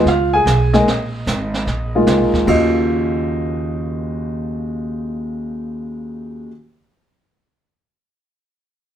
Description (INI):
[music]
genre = jazz piano trio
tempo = 149 BPM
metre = 4/4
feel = swing 66% on 8ths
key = Eb minor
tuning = A4 = 440 Hz
[part]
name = dark upright piano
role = melody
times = 0.0-6.5 s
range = Eb2 to Ab5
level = -18 LUFS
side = equal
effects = none
[part]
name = upright bass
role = bass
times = 0.0-6.5 s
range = Ab1 to Eb2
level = -22 LUFS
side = right 1 dB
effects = none
[part]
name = jazz brush drum kit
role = drums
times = 0.1-2.8 s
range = brushed snare drum, crash cymbal, hi-hat, kick drum, snare drum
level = -24 LUFS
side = right 2 dB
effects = none
[sound]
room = moderate club reverb, RT60 0.5 s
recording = heard from further back in the room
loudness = -16 LUFS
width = side -10 dB against mid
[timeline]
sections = 0.0-2.5 A section; 2.5-5.7 B section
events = none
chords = 0.0 Fm7b5; 0.9 Bb7sus4; 2.5 Ebm9